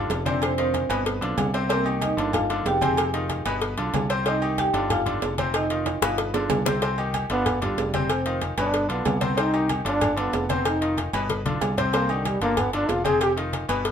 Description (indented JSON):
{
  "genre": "latin, salsa",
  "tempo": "188 BPM",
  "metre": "4/4",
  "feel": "straight",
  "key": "C harmonic minor",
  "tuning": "A4 = 440 Hz",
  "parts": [
    { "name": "marimba with medium hard mallets", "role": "melody", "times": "0.0-6.6 s", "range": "Bb3 to Ab5", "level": "-27 LUFS", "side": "right 1 dB", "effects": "none" },
    { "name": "bright grand piano", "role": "accompaniment", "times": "0.0-13.9 s", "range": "B2 to C5", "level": "-27 LUFS", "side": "left 1 dB", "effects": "none" },
    { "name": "fingered electric bass", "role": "bass", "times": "0.0-13.9 s", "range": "F1 to C2", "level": "-29 LUFS", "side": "equal", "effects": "none" },
    { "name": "congas", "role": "percussion", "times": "0.1-13.9 s", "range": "none", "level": "-33 LUFS", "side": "left 3 dB", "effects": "none" },
    { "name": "cowbell and bongos", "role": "percussion", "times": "0.1-13.9 s", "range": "none", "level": "-29 LUFS", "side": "left 3 dB", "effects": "none" },
    { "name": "timbales and agogo bells", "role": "percussion", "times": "0.1-13.9 s", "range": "none", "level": "-30 LUFS", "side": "right 3 dB", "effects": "none" },
    { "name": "warm trombone", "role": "melody", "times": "7.3-13.3 s", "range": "D3 to Ab4", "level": "-25 LUFS", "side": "equal", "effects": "none" }
  ],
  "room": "moderate studio reverb, RT60 0.5 s",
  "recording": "minimal, uncompressed stereo recording",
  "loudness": "-21 LUFS",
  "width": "side -8 dB against mid",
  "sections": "0.0-6.8 A section; 6.8-13.9 B section",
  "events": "drum fill 5.9-6.8, 11.3-11.9; trombone solo 6.8-13.9",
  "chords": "0.4 F5; 1.1 G7; 1.7 Cm7; 2.3 G5; 3.0 Fm7; 3.6 G7; 4.3 Cm; 4.9 G5; 5.5 F5; 6.2 G7; 6.8 Cm; 7.5 G5; 8.1 F5; 8.7 G7; 9.4 Cm; 10.0 G7; 10.7 F5; 11.3 G7; 11.9 Cm; 12.6 G5; 13.2 F5",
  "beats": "0.10 | 0.42 0.74 1.06 1.38 | 1.70 2.02 2.34 2.66 | 2.98 3.30 3.62 3.94 | 4.26 4.58 4.90 5.22 | 5.54 5.86 6.18 6.50 | 6.82 7.14 7.46 7.78 | 8.10 8.42 8.74 9.06 | 9.38 9.70 10.02 10.34 | 10.65 10.97 11.29 11.61 | 11.93 12.25 12.57 12.89 | 13.21 13.53 13.85"
}